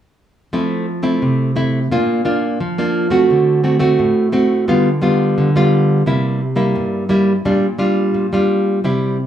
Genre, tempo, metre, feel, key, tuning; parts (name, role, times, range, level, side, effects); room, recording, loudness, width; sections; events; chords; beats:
samba; 87 BPM; 4/4; straight; F major; A4 = 440 Hz
nylon-string guitar; solo; 0.5-9.3 s; G2 to Gb4; -14 LUFS; right 1 dB
wet studio reverb, RT60 0.7 s; heard from further back in the room, small room ambience; -14 LUFS; side -10 dB against mid
0.5-9.3 A section
0.5 Fmaj7; 1.9 Bb; 3.3 D7; 4.7 G7/D; 6.1 C7; 7.5 Gm7/Bb
| 0.53 1.22 1.92 2.61 | 3.30 3.99 4.69 5.38 | 6.07 6.76 7.46 8.15 | 8.84